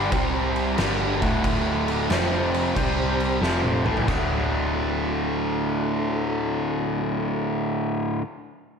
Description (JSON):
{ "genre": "blues rock power trio and southern rock", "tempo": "91 BPM", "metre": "4/4", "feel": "swing 67% on 8ths", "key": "unclear", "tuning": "A4 = 440 Hz", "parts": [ { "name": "tonewheel organ", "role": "sustained chords", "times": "0.0-7.5 s", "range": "F3 to F#5", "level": "-32 LUFS", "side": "right 4 dB", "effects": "slow rotary speaker, chorus vibrato" }, { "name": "overdriven electric guitar", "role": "riff", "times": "0.0-8.2 s", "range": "D2 to C4", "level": "-24 LUFS", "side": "equal", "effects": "none" }, { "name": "vintage muted picked electric bass", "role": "bass", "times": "0.0-8.2 s", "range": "D1 to C2", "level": "-30 LUFS", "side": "equal", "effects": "none" }, { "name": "oversized low-tuned drum kit", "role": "drums", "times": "0.1-4.3 s", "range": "crash cymbal, kick drum, snare drum, splash cymbal, toms", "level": "-27 LUFS", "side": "equal", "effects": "none" } ], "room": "moderate lush hall reverb, RT60 1.7 s, small room ambience", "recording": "big arena sound", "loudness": "-21 LUFS", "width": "side -6 dB against mid", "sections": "0.0-4.1 A section; 4.1-6.7 B section", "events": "drum fill 3.4-4.1", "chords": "0.1 C5; 0.8 D; 2.1 F5; 2.8 C5; 3.4 D" }